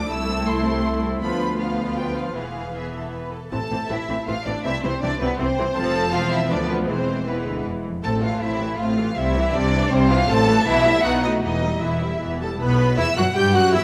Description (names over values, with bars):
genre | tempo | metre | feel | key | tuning
quick classical-period movement for string orchestra | 159 BPM | 3/4 | straight | A minor, E minor from 10.3 s | A4 = 442 Hz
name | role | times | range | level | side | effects
rich studio violin section | melody | 0.0-13.8 s | B4 to G6 | -28 LUFS | equal | none
warm studio violin section | second line | 0.0-13.8 s | A3 to G5 | -28 LUFS | equal | none
rich studio viola section | accompaniment | 0.0-13.8 s | E3 to G4 | -27 LUFS | equal | none
rich studio double bass section | bass | 0.0-13.8 s | E1 to G2 | -29 LUFS | equal | none
warm studio cello section | bass | 0.0-13.8 s | C2 to G3 | -30 LUFS | equal | none
room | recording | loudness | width
wet recital hall reverb, RT60 1.8 s | none | -22 LUFS | mono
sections
0.0-3.5 A section; 3.5-12.6 B section; 12.6-13.8 C section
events
none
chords
0.1 Am/C; 1.2 Bdim/D; 2.4 E; 3.5 Am; 4.6 C; 5.8 F; 6.5 Bdim/D; 6.9 E; 8.0 Am; 9.2 C; 10.3 Am; 10.7 Em/B; 11.0 B7; 11.4 Em; 12.6 Em/B